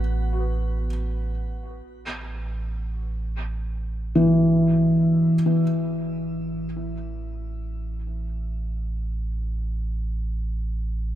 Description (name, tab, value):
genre	ambient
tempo	free time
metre	none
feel	none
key	unclear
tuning	A4 = 441 Hz
part	felt-muted upright piano	arpeggios	0.0-5.6 s	E3 to B4	-21 LUFS	equal	analog delay, shimmer reverb
part	warm sub bass	bass	0.0-11.2 s	A1	-28 LUFS	right 1 dB	none
room	moderate spring reverb, RT60 2.4 s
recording	echo-heavy mix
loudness	-23 LUFS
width	side -12 dB against mid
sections	0.0-5.3 A section; 5.3-11.2 B section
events	fade-out on sub bass 0.0-5.3; fade-in on sub bass 5.3-11.2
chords	0.0 F#m/A; 1.9 A5